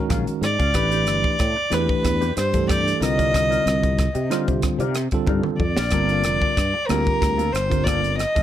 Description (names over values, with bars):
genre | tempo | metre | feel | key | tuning
electric jazz fusion | 93 BPM | 4/4 | straight | G minor | A4 = 440 Hz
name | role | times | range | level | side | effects
bell-like tine electric piano | accompaniment | 0.0-8.2 s | D3 to C5 | -25 LUFS | right 1 dB | medium stereo tremolo, plate reverb
mellow electric guitar | stabs | 0.1-8.4 s | Gb3 to D5 | -31 LUFS | left 2 dB | lush chorus, plate reverb
sustaining fretless electric bass | bass | 0.1-8.4 s | F1 to C3 | -24 LUFS | equal | analog chorus
crisp fusion drum kit | drums | 0.1-8.4 s | hi-hat, kick drum, rim click, snare drum, toms | -25 LUFS | equal | none
warm violin | melody | 0.4-8.4 s | Bb4 to Eb5 | -22 LUFS | equal | slapback echo, plate reverb
room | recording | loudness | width
light reverb | none | -18 LUFS | side -11 dB against mid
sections
0.0-8.4 A section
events
drum fill 5.3-5.9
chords
0.0 Ebm11; 0.7 Am11; 3.0 Cm11; 5.9 Gm11